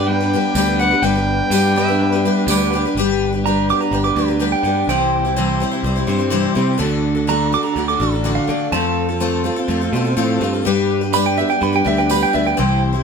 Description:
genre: folk rock and heartland rock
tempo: 125 BPM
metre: 4/4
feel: straight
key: G major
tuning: A4 = 440 Hz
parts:
  - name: overdriven harmonica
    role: melody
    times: 0.0-2.5 s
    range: D5 to G5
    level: -20 LUFS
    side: left 1 dB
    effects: none
  - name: picked twelve-string acoustic guitar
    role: accompaniment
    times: 0.0-13.0 s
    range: C3 to C5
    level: -20 LUFS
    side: left 4 dB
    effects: none
  - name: tonewheel organ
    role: sustained chords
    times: 0.0-13.0 s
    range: B3 to D5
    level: -30 LUFS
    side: right 3 dB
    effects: slow rotary speaker
  - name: electric guitar through a small old amp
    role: riff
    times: 0.0-13.0 s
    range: C3 to B4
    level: -22 LUFS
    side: equal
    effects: none
  - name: modern bright picked electric bass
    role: bass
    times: 0.0-13.0 s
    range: G1 to D3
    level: -22 LUFS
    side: equal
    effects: none
  - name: tambourine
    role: percussion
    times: 0.6-2.6, 11.1-12.2 s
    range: none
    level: -26 LUFS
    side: right 7 dB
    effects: none
  - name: pedal steel guitar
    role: second line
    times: 1.8-12.8 s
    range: D5 to D6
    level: -21 LUFS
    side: right 7 dB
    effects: none
room: moderate studio reverb, RT60 0.8 s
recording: band playing live in one room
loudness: -15 LUFS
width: side -6 dB against mid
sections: 0.0-3.0 A section; 3.0-13.0 B section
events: pedal steel guitar solo 3.0-13.0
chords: 0.0 G; 4.9 C; 6.8 D; 8.7 F; 10.7 G

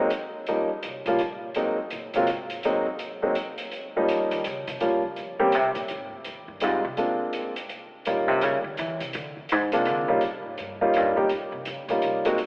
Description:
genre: jazz piano trio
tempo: 166 BPM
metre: 3/4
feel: swing 63% on 8ths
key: Eb mixolydian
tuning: A4 = 439 Hz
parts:
  - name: warm baby grand piano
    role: melody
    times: 0.0-12.4 s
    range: F3 to G4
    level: -24 LUFS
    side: equal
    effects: none
  - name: hi-hat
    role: drums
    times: 0.1-12.5 s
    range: none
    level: -36 LUFS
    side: equal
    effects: none
  - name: upright bass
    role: bass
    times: 0.8-12.2 s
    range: C2 to E3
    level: -29 LUFS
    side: equal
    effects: none
room: wet church reverb, RT60 3.4 s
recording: recorded in a church or concert hall, telephone sound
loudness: -23 LUFS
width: side -33 dB against mid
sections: 0.0-10.2 A section; 10.2-12.5 A section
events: upright bass solo 0.0-12.5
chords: 0.5 Eb7 (rootless); 1.6 Ab7; 3.7 Eb7; 4.8 Gm7b5; 5.5 Bbsus2; 5.9 Fm7 (rootless); 7.0 Bb7; 8.1 Eb7; 8.8 C; 9.1 Bb7; 10.2 Eb7

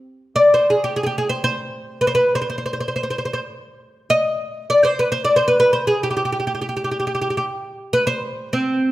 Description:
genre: arabic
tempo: free time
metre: none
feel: none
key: C maqam nahawand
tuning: A4 = 440 Hz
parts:
  - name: oud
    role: solo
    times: 0.4-8.9 s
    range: C4 to Eb5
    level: -17 LUFS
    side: equal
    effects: none
room: moderate recital hall reverb, RT60 1.4 s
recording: none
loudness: -17 LUFS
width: side -15 dB against mid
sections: 0.1-8.9 A section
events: none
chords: none

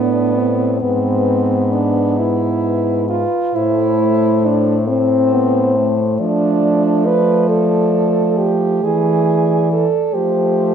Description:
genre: classical, lyrical piece for horn quartet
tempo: 45 BPM (dotted quarters)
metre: 6/8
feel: rubato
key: A minor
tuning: A4 = 440 Hz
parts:
  - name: mellow French horn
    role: melody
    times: 0.0-10.7 s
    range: B4 to D5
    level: -22 LUFS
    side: left 8 dB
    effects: none
  - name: warm French horn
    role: second line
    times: 0.0-10.7 s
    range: B3 to B4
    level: -17 LUFS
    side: right 6 dB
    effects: none
  - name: mellow French horn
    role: accompaniment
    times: 0.0-10.7 s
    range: A3 to D4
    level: -19 LUFS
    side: left 4 dB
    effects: none
  - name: warm French horn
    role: bass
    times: 0.0-10.7 s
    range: G#2 to F3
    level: -20 LUFS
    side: equal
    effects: none
room: moderate recital hall reverb, RT60 1.6 s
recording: dark, warm production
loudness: -13 LUFS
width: side -8 dB against mid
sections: 0.0-10.7 A section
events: none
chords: 0.0 Asus24; 0.8 E/G#; 3.5 Am; 6.2 Dm/F; 8.8 E; 10.1 F

